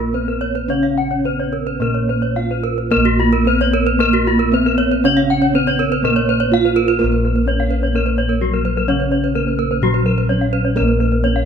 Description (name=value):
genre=Balinese gamelan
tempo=108-127 BPM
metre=4/4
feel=straight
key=Bb pelog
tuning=A4 = 440 Hz
part: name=gamelan-type bronze metallophone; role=melody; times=0.0-11.5 s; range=Gb3 to F4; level=-19 LUFS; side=right 1 dB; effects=tape echo
part: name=gamelan-type bronze metallophone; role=accompaniment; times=0.0-11.5 s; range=Db3 to Bb3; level=-24 LUFS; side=right 6 dB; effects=none
part: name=gamelan-type bronze metallophone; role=arpeggios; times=0.0-11.2 s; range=Gb4 to F5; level=-24 LUFS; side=right 7 dB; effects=none
part: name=gamelan-type bossed gongs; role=bass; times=0.0-11.5 s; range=Bb1 to Bb4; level=-20 LUFS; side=left 2 dB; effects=none
part: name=gamelan-type bronze metallophone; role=arpeggios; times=0.1-11.5 s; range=F4 to Gb5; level=-20 LUFS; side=left 3 dB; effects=none
room=light reverb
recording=close, detailed microphones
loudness=-14 LUFS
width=side -7 dB against mid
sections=0.0-7.0 A section; 7.0-11.5 B section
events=none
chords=none